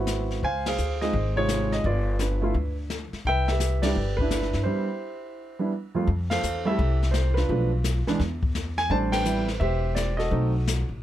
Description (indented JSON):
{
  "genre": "jazz piano trio",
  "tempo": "170 BPM",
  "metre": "4/4",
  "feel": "swing 65% on 8ths",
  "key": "C major",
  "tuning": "A4 = 440 Hz",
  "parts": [
    { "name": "warm grand piano", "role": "melody", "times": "0.0-10.9 s", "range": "F2 to A5", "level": "-26 LUFS", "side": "right 2 dB", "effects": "none" },
    { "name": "upright bass", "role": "bass", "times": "0.0-11.0 s", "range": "E1 to G2", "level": "-26 LUFS", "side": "equal", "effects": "none" },
    { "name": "jazz brush drum kit", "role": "drums", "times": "0.1-11.0 s", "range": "brushed snare drum, hi-hat, kick drum, ride cymbal, snare drum", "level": "-31 LUFS", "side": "left 3 dB", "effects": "none" }
  ],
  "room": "little or no reverb",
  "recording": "close, detailed microphones",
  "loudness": "-23 LUFS",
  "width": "side -12 dB against mid",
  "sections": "0.0-6.1 A section; 6.1-11.0 B section",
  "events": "band accent 0.6, 3.8, 6.3, 9.1; break 4.7-6.1",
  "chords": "0.4 Dbmaj9; 1.8 G7; 3.3 Cmaj9; 6.1 Fmaj9; 7.5 Bm7b5; 8.2 N.C.; 8.9 Am11; 10.3 B7b9"
}